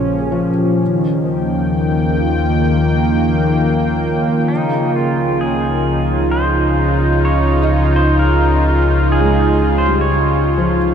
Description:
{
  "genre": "ambient",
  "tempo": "65 BPM",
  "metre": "4/4",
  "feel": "straight",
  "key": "Db lydian",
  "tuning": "A4 = 440 Hz",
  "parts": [
    { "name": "warm analog pad", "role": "sustained chords", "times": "0.0-10.9 s", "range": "Bb2 to G5", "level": "-15 LUFS", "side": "equal", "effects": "chorus" },
    { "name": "felt-muted upright piano", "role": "arpeggios", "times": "0.0-10.9 s", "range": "F3 to Eb5", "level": "-23 LUFS", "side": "left 1 dB", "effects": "tape echo" },
    { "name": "round analog bass", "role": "bass", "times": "0.0-10.9 s", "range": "Bb1 to Eb2", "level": "-19 LUFS", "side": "equal", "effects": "none" },
    { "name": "analog drone", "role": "drone", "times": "0.0-10.9 s", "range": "Db3 to F3", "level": "-25 LUFS", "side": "left 2 dB", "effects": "none" },
    { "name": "pedal steel guitar", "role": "melody", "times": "4.5-10.9 s", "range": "Eb4 to Db5", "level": "-20 LUFS", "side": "equal", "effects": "tape echo" }
  ],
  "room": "wet huge ambient reverb, RT60 8.1 s",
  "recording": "none",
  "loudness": "-13 LUFS",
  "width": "side -8 dB against mid",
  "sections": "0.0-10.9 A section",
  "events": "fade-in on felt piano 0.0-10.9; fade-in on analog synth bass 0.0-10.9; fade-in on pedal steel guitar 0.0-10.9; fade-out 9.4-10.9",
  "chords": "0.0 Bbm7; 0.8 Eb; 4.5 Db"
}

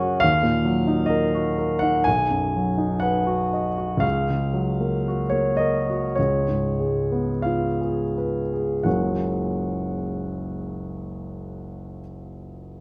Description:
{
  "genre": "classical, romantic nocturne for solo piano",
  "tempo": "39-71 BPM",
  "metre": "4/4",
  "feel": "rubato",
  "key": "F# major",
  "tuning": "A4 = 437 Hz",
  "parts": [
    { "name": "warm grand piano", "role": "solo", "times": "0.0-12.8 s", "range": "F#1 to G#5", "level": "-24 LUFS", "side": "equal", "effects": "none" }
  ],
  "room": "wet recital hall reverb, RT60 1.4 s",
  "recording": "none",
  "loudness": "-23 LUFS",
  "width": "mono",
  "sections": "0.0-8.9 A section; 8.9-12.8 B section",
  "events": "slowing down 0.0-8.9",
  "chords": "0.2 D#m; 2.1 B; 4.0 F#/C#; 6.2 C#7; 8.9 F#"
}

